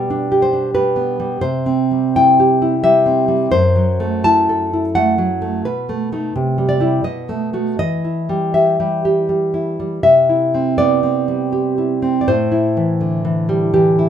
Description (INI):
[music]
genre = romantic piece for solo classical guitar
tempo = 74-92 BPM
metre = 3/4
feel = rubato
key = unclear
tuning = A4 = 440 Hz
[part]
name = nylon-string guitar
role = solo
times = 0.0-14.1 s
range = F#2 to A5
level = -14 LUFS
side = equal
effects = none
[sound]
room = moderate studio reverb, RT60 0.8 s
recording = minimal, uncompressed stereo recording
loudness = -14 LUFS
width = side -9 dB against mid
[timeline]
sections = 0.0-10.1 A section; 10.1-14.1 B section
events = none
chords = 0.0 G/B; 1.4 C; 3.5 F#m7b5; 5.7 B7; 6.4 C; 7.1 B7; 7.8 Em; 10.1 C; 12.3 Am7